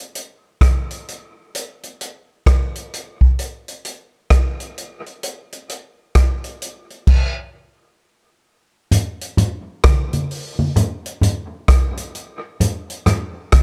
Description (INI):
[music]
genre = reggae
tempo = 65 BPM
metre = 4/4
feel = swing 62% on 16ths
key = none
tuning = none
[part]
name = vintage drum kit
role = drums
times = 0.2-13.6 s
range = crash cymbal, hi-hat, kick drum, rim click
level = -18 LUFS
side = equal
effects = none
[part]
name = congas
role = percussion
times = 8.9-13.6 s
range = none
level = -20 LUFS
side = equal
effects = none
[sound]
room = little or no reverb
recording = none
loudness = -19 LUFS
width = mono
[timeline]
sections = 0.0-8.9 A section; 8.9-13.6 B section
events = break 0.0-8.9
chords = none